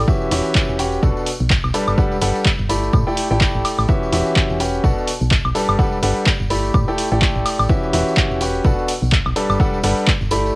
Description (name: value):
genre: piano house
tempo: 126 BPM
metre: 4/4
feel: swing 58% on 16ths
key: E dorian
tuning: A4 = 440 Hz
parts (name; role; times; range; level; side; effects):
- bright concert grand piano; riff; 0.0-10.6 s; B2 to B5; -20 LUFS; equal; sidechain pumping, cassette tape
- solid FM bass; bass; 0.0-10.5 s; E1 to A2; -21 LUFS; equal; sidechain pumping
- electronic kick drum; drums; 0.1-10.2 s; none; -19 LUFS; equal; cassette tape
- tambourine; percussion; 0.1-10.5 s; none; -35 LUFS; right 2 dB; none
- punchy analog drum machine; drums; 0.3-10.4 s; handclaps, hi-hat, woodblock; -22 LUFS; equal; cassette tape
room: little or no reverb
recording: home recording on cassette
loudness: -15 LUFS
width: side -24 dB against mid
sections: 0.0-10.6 A section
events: none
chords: 0.1 Em69; 1.0 Bm7; 1.7 Gmaj9; 2.9 A7sus4; 3.9 Em69; 4.8 Bm7; 5.6 Gmaj9; 6.7 A7sus4; 7.7 Em69; 8.6 Bm7; 9.4 Gmaj9